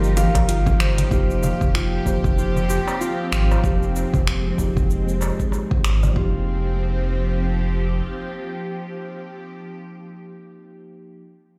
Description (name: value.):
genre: organic downtempo.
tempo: 95 BPM.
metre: 4/4.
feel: swing 58% on 16ths.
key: F minor.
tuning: A4 = 439 Hz.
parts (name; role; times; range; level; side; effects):
breathy flute-like synth lead; melody; 0.0-0.5 s; Bb4; -40 LUFS; equal; none.
muted felt-like synth keys; accompaniment; 0.0-11.2 s; F3 to G4; -31 LUFS; equal; chorus, sidechain pumping, low-pass filter, digital delay.
bowed-like drone; sustained chords; 0.0-9.4 s; F3 to G4; -32 LUFS; equal; built-in reverb, phaser, sidechain pumping.
concert harp; arpeggios; 0.0-8.7 s; F4 to F5; -31 LUFS; equal; digital delay.
warm sub bass; bass; 0.0-8.0 s; F1 to Bb1; -24 LUFS; equal; sidechain pumping.
afro-pop drum kit; drums; 0.0-6.1 s; cabasa, congas, finger snaps, hi-hat; -30 LUFS; equal; overdrive.
electronic kick drum; drums; 0.3-6.3 s; none; -24 LUFS; equal; overdrive.
darbuka; percussion; 0.3-6.1 s; none; -32 LUFS; equal; none.
room: light reverb.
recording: played on a big sound system in a bare room, large studio reverb.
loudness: -21 LUFS.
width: mono.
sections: 0.0-1.1 A section; 1.1-6.2 B section; 6.2-8.7 C section.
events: filter sweep on synth keys 1.1-6.2; filter sweep on synth drone 1.1-6.2.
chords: 0.0 Gm; 1.1 Fm7; 6.2 F5.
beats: 0.48 | 1.11 1.74 2.37 3.00 | 3.64 4.27 4.90 5.53 | 6.16 6.79 7.43 8.06.